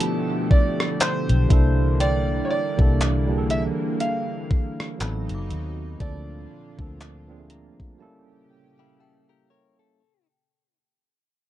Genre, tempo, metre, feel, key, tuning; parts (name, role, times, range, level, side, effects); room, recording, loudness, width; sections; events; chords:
contemporary R&B; 60 BPM; 4/4; swing 58% on 16ths; A4 = 435 Hz
clear baby grand piano; melody; 0.0-8.0 s; C5 to A5; -28 LUFS; right 2 dB; digital delay
tine electric piano; accompaniment; 0.0-10.0 s; E3 to Bb5; -29 LUFS; right 3 dB; medium stereo tremolo
lush unison pad; sustained chords; 0.0-10.0 s; Bb2 to G4; -30 LUFS; left 2 dB; chorus
crisp 8-bit digital drum machine; drums; 0.0-8.0 s; handclaps, hi-hat, kick drum, rim click; -21 LUFS; equal; vintage 12-bit sampler grit
synth chime; texture; 0.0-10.5 s; E5 to D6; -40 LUFS; left 4 dB; ensemble chorus, digital delay
vintage muted fingered electric bass; bass; 1.3-7.7 s; F#1 to Eb2; -23 LUFS; equal
direct-recorded clean electric guitar; arpeggios; 8.8-10.3 s; E4 to C#5; -68 LUFS; left 14 dB
little or no reverb; dark, warm production; -20 LUFS; side -13 dB against mid
0.0-10.0 A section
fade-out 0.0-10.0; tine electric piano fill 7.0-10.0; break 8.0-10.0
0.0 G13; 1.5 C13; 5.0 Adim7; 6.0 Bbmaj7/D; 8.0 A7b9